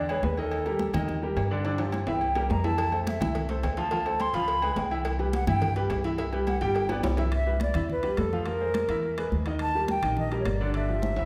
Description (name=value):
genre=Afro-Cuban jazz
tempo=212 BPM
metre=4/4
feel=straight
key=C major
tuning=A4 = 440 Hz
part: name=mellow hollow silver concert flute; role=melody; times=0.0-11.3 s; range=A4 to C6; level=-32 LUFS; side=equal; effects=none
part: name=warm baby grand piano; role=accompaniment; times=0.0-11.3 s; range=D3 to G5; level=-33 LUFS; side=equal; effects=none
part: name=upright bass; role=bass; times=0.0-11.3 s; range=G1 to G2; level=-33 LUFS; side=equal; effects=none
part: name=agogo bells and timbales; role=percussion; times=0.1-11.2 s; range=none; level=-38 LUFS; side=equal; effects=none
part: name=congas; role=percussion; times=0.1-11.3 s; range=none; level=-37 LUFS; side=equal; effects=none
part: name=cowbell and bongos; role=percussion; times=2.8-7.2 s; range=none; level=-41 LUFS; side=equal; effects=none
room=wet recital hall reverb, RT60 1.8 s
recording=recorded in a church or concert hall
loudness=-27 LUFS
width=mono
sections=0.0-7.3 A section; 7.3-11.3 B section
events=flute solo 0.0-7.3; drum fill 1.7-2.8, 6.9-7.3, 11.0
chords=0.0 E7; 0.5 Ebmaj7; 1.7 G5; 2.2 C7; 2.8 Fmaj7; 3.9 Dm7; 4.5 Db7; 5.1 Cmaj7; 6.8 G; 7.3 Cmaj9; 8.5 Fm; 9.0 E; 9.6 Ebmaj7; 10.7 G5